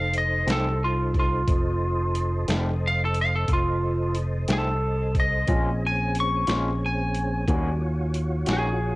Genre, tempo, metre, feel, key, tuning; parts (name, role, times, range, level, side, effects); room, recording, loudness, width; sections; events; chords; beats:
slow blues; 60 BPM (dotted quarters); 12/8; straight; A4 = 439 Hz
lightly driven lead guitar; melody; 0.0-9.0 s; F4 to Db6; -26 LUFS; equal; cassette tape
tonewheel organ; sustained chords; 0.0-9.0 s; G3 to Eb5; -34 LUFS; equal; slow rotary speaker, chorus vibrato
fingered electric bass; bass; 0.0-9.0 s; F1 to Eb2; -26 LUFS; equal
boom bap sampler-style drum kit; drums; 0.1-8.6 s; hi-hat, kick drum, snare drum; -26 LUFS; equal
electric guitar through a small old amp; accompaniment; 0.5-8.7 s; F2 to Gb4; -29 LUFS; left 1 dB; harmonic tremolo
digital ambience; home recording on cassette; -22 LUFS; side -21 dB against mid
0.0-9.0 A section
lead electric guitar solo 0.0-9.0
0.0 F7; 5.5 Bbm7; 7.5 Ebm7
0.47 | 1.48 2.48 3.48 4.49 | 5.49 6.49 7.49 8.48